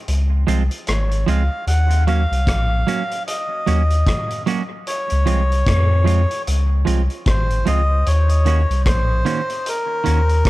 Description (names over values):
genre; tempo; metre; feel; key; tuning
dub reggae; 75 BPM; 4/4; swing 59% on 16ths; Eb dorian; A4 = 440 Hz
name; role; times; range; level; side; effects
warm sub bass; bass; 0.1-10.4 s; Ab1 to F2; -16 LUFS; equal; none
vintage drum kit; drums; 0.1-10.5 s; hi-hat, kick drum, rim click; -23 LUFS; equal; none
semi-hollow electric guitar; accompaniment; 0.5-10.2 s; Eb3 to Gb4; -25 LUFS; right 6 dB; dub echo
melodica; melody; 0.9-10.5 s; Bb4 to Gb5; -23 LUFS; left 1 dB; dub echo
room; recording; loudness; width
light reverb, small room reverb; dark, warm production; -16 LUFS; side -18 dB against mid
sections
0.0-10.5 A section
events
break 0.1-1.7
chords
0.0 Dbmaj7; 1.7 Ebm7; 4.9 Dbmaj7; 8.1 Ebm7